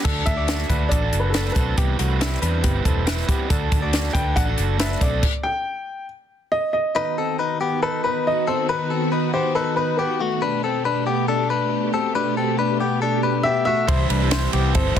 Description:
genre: jangly indie pop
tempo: 139 BPM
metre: 4/4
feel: straight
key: unclear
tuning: A4 = 439 Hz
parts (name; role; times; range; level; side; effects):
- crunchy overdriven guitar; accompaniment; 0.0-5.2, 13.9-15.0 s; C3 to C5; -27 LUFS; right 10 dB; none
- direct-recorded clean electric guitar; arpeggios; 0.0-15.0 s; G3 to D5; -24 LUFS; left 6 dB; slapback echo
- compact cocktail drum kit; drums; 0.0-5.3, 13.9-15.0 s; crash cymbal, hi-hat, kick drum, ride cymbal, snare drum; -22 LUFS; equal; none
- vintage muted fingered electric bass; bass; 0.1-5.2, 13.9-15.0 s; E1 to E2; -23 LUFS; equal; none
- dark upright piano; melody; 0.3-10.3, 13.4-15.0 s; A4 to G5; -24 LUFS; equal; slapback echo
- string machine, violas; sustained chords; 7.0-15.0 s; B2 to G4; -24 LUFS; right 1 dB; ensemble chorus
room: small room ambience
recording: dense, heavily limited modern master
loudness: -19 LUFS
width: side -9 dB against mid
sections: 0.1-7.0 A section; 7.0-15.0 B section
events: stop 5.2-7.0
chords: 0.1 D; 1.8 Cmaj7; 3.5 D; 5.2 N.C.; 7.0 B; 10.4 Gadd9; 13.9 C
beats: | 0.05 0.48 0.91 1.34 | 1.78 2.21 2.64 3.07 | 3.50 3.93 4.37 4.80 | 5.23 5.66 6.09 6.53 | 6.96 7.39 7.83 8.26 | 8.69 9.12 9.55 9.99 | 10.42 10.85 11.29 11.72 | 12.15 12.59 13.02 13.45 | 13.88 14.32 14.75

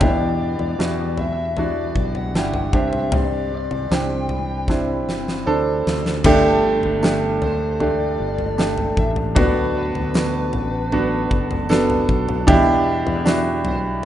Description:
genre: pop ballad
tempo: 77 BPM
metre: 4/4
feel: straight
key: G major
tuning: A4 = 445 Hz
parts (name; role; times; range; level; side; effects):
- smooth overdriven lead guitar; melody; 0.0-13.8 s; B4 to G5; -29 LUFS; left 4 dB; tape echo
- clear grand piano; accompaniment; 0.0-14.1 s; G2 to A4; -20 LUFS; right 2 dB; none
- mellow brass ensemble; sustained chords; 0.0-14.1 s; G3 to C6; -31 LUFS; equal; none
- fingerpicked steel-string acoustic guitar; arpeggios; 0.0-14.1 s; G2 to A4; -30 LUFS; left 4 dB; none
- fretless electric bass; bass; 0.0-14.1 s; F#1 to E2; -26 LUFS; equal; wide subtle chorus
- huge arena drum kit; drums; 0.0-13.8 s; crash cymbal, kick drum, snare drum, toms; -23 LUFS; left 1 dB; none
- tambourine; percussion; 7.0-13.4 s; none; -43 LUFS; left 6 dB; none
room: moderate plate reverb, RT60 1.9 s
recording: rough home demo mix, nothing above 11.0 kHz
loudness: -17 LUFS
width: side -11 dB against mid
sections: 0.0-6.2 A section; 6.2-14.1 B section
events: drum fill 4.7-6.2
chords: 0.0 Em7; 2.7 Csus2; 6.2 Gsus2; 9.4 D6; 12.5 Em7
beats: | 0.01 0.79 1.57 2.35 | 3.13 3.91 4.69 5.47 | 6.25 7.03 7.80 8.58 | 9.36 10.14 10.92 11.70 | 12.48 13.26 14.04

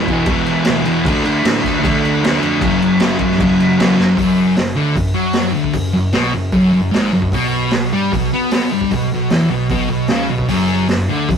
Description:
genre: garage rock duo or trio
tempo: 152 BPM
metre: 4/4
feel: straight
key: unclear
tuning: A4 = 440 Hz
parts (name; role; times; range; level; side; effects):
- thick fuzz guitar; riff; 0.0-11.4 s; E2 to D4; -14 LUFS; equal; distortion
- growling picked electric bass; bass; 0.0-11.4 s; E1 to B2; -26 LUFS; equal; overdrive
- raw garage drum kit; drums; 0.1-11.4 s; crash cymbal, hi-hat, kick drum, snare drum; -19 LUFS; right 1 dB; none
room: light reverb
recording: rough rehearsal-room recording, warm saturation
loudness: -13 LUFS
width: side -7 dB against mid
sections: 0.0-4.2 A section; 4.2-11.4 B section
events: drum fill 4.0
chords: 0.0 E5; 1.1 D5; 2.6 F#5; 4.2 Bm6/F#; 7.3 Em/B (rootless); 10.5 Bm/F# (rootless)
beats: 0.27 0.66 | 1.05 1.44 1.83 2.22 | 2.61 3.00 3.39 3.78 | 4.17 4.57 4.96 5.35 | 5.75 6.14 6.54 6.93 | 7.33 7.72 8.12 8.52 | 8.91 9.31 9.71 10.10 | 10.50 10.90 11.29

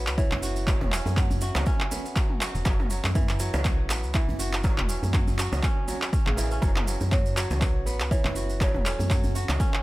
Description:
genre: afro house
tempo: 121 BPM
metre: 4/4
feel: swing 56% on 16ths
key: F# minor pentatonic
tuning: A4 = 440 Hz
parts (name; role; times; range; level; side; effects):
- buzzing kalimba; melody; 0.0-1.9, 7.1-9.8 s; A4 to F#5; -36 LUFS; right 2 dB; dub echo
- kora; arpeggios; 0.0-9.8 s; C#3 to F#4; -33 LUFS; right 1 dB; sidechain pumping, dub echo
- woody FM bass; bass; 0.0-9.6 s; E1 to F#2; -28 LUFS; equal; sidechain pumping
- deep house drum kit; drums; 0.1-9.8 s; handclaps, toms; -31 LUFS; equal; overdrive
- maracas; percussion; 0.1-9.7 s; none; -38 LUFS; right 3 dB; none
- electronic kick drum; drums; 0.2-9.7 s; none; -25 LUFS; equal; overdrive
- djembe; percussion; 0.3-9.7 s; none; -35 LUFS; right 1 dB; none
room: small room ambience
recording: none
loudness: -23 LUFS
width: side -18 dB against mid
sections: 0.0-9.8 A section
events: none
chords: 0.0 F#7(no3)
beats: 0.18 | 0.67 1.17 1.67 2.16 | 2.66 3.15 3.65 4.14 | 4.64 5.14 5.63 6.13 | 6.62 7.12 7.62 8.11 | 8.61 9.10 9.60

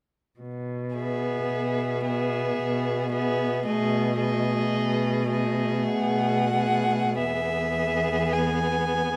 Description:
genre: classical, slow romantic movement for string quartet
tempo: 44-58 BPM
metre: 3/4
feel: rubato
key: E major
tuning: A4 = 439 Hz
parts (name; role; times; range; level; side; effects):
- rich cello; bass; 0.4-9.2 s; E2 to B2; -30 LUFS; equal; none
- warm violin; melody; 1.0-9.2 s; D#5 to G#5; -32 LUFS; equal; none
- rich violin; second line; 1.0-9.2 s; G#4; -33 LUFS; equal; none
- clear viola; accompaniment; 1.0-9.2 s; A3 to B3; -31 LUFS; equal; none
room: light reverb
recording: close, detailed microphones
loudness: -25 LUFS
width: mono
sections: 0.4-7.2 A section; 7.2-9.2 B section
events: none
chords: 0.4 E/B; 3.7 B6; 7.2 E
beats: | 0.40 1.53 2.59 | 3.66 4.75 5.91 | 7.18 8.32

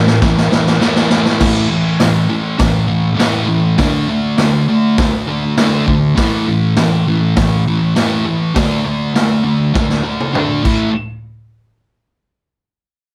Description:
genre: garage rock duo or trio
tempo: 101 BPM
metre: 4/4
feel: straight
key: unclear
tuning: A4 = 440 Hz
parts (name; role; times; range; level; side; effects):
- thick fuzz guitar; riff; 0.0-10.9 s; A2 to D4; -16 LUFS; equal; distortion
- raw garage drum kit; drums; 0.1-10.8 s; crash cymbal, hi-hat, kick drum, snare drum, toms; -19 LUFS; equal; none
room: moderate club reverb, RT60 0.5 s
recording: none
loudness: -14 LUFS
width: mono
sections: 0.0-1.4 A section; 1.4-10.9 B section; 10.9-13.1 C section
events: drum fill 0.0-1.4, 9.8-10.9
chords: 0.0 A5; 3.8 D5; 6.2 A5; 8.6 D5; 10.7 A5; 10.9 N.C.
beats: 0.22 0.81 | 1.41 2.00 2.60 3.19 | 3.79 4.39 4.98 5.58 | 6.17 6.77 7.37 7.96 | 8.56 9.16 9.76 10.35

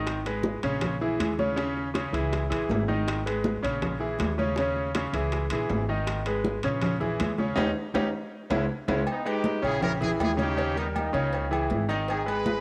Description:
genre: latin, salsa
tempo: 160 BPM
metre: 4/4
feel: straight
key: G# harmonic minor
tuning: A4 = 440 Hz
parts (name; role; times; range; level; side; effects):
- bright concert grand piano; accompaniment; 0.0-12.6 s; C#3 to D#5; -31 LUFS; equal; cassette tape
- upright bass; bass; 0.0-12.6 s; G#1 to D#2; -35 LUFS; equal; none
- bongos and cowbell; percussion; 0.1-12.6 s; none; -41 LUFS; equal; none
- congas; percussion; 0.1-12.6 s; none; -35 LUFS; equal; none
- timbales and agogo bells; percussion; 0.1-12.5 s; none; -38 LUFS; equal; none
- brilliant horn section; melody; 9.1-12.6 s; A#3 to B4; -34 LUFS; equal; cassette tape
room: light reverb, small room ambience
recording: home recording on cassette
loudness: -28 LUFS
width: mono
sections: 0.0-9.1 A section; 9.1-12.6 B section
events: drum fill 7.6-9.1; band accent 7.6-9.1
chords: 0.1 G#m; 0.8 A#m7b5; 1.6 C#madd9; 2.3 C#m; 3.1 G#m; 3.8 A#m7b5; 4.6 C#madd9; 5.3 C#m; 6.1 G#m; 6.8 A#m7b5; 7.6 D#7; 8.3 C#m; 9.1 G#m; 9.8 A#m7b5; 10.6 D#7; 11.3 C#m; 12.1 G#m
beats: | 0.07 0.45 0.82 1.20 | 1.57 1.95 2.32 2.70 | 3.07 3.45 3.82 4.20 | 4.57 4.95 5.32 5.70 | 6.07 6.45 6.82 7.20 | 7.57 7.95 8.32 8.70 | 9.07 9.45 9.82 10.20 | 10.57 10.95 11.33 11.70 | 12.08 12.45

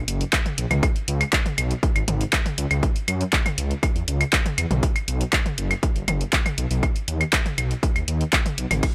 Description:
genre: melodic techno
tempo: 120 BPM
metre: 4/4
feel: straight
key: unclear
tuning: A4 = 443 Hz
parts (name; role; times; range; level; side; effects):
- swelling detuned saw bass; bass; 0.0-8.9 s; F#1 to F#2; -26 LUFS; equal; sidechain pumping
- punchy analog drum machine; drums; 0.1-8.9 s; claves, handclaps, hi-hat, ride cymbal, toms; -26 LUFS; equal; none
- electronic kick drum; drums; 0.3-8.9 s; none; -25 LUFS; equal; none
room: little or no reverb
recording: none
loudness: -23 LUFS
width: mono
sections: 0.0-8.9 A section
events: none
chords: none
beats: 0.33 | 0.83 1.33 1.83 2.33 | 2.83 3.33 3.83 4.33 | 4.83 5.33 5.83 6.33 | 6.83 7.33 7.83 8.33 | 8.83

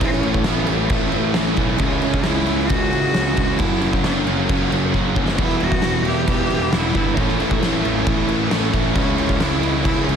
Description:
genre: quiet-loud alternative rock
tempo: 134 BPM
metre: 4/4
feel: straight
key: unclear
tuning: A4 = 440 Hz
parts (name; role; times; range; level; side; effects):
- clear cello; melody; 0.0-10.2 s; A3 to G4; -25 LUFS; left 1 dB; slapback echo
- string machine, violas; sustained chords; 0.0-10.2 s; G3 to C#6; -32 LUFS; equal; none
- crunchy overdriven guitar; riff; 0.0-10.2 s; E2 to C#4; -26 LUFS; right 1 dB; none
- thick fuzz guitar; riff; 0.0-10.2 s; F#2 to E4; -26 LUFS; left 12 dB; distortion
- thick fuzz guitar; riff; 0.0-10.2 s; F#2 to E4; -25 LUFS; right 12 dB; distortion
- fuzz picked electric bass; bass; 0.0-10.2 s; E1 to C#2; -24 LUFS; equal; overdrive
- oversized low-tuned drum kit; drums; 0.0-10.2 s; crash cymbal, kick drum, snare drum; -21 LUFS; equal; none
room: light reverb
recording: dense, heavily limited modern master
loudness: -16 LUFS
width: side -7 dB against mid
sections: 0.0-10.2 A section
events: drum fill 4.9-5.4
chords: 0.0 A; 1.8 C#m; 3.6 F#; 5.4 Em; 7.2 A; 9.0 C#m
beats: | 0.01 0.46 0.91 1.36 | 1.80 2.25 2.70 3.15 | 3.60 4.04 4.49 4.94 | 5.39 5.83 6.28 6.73 | 7.18 7.62 8.07 8.52 | 8.96 9.41 9.86

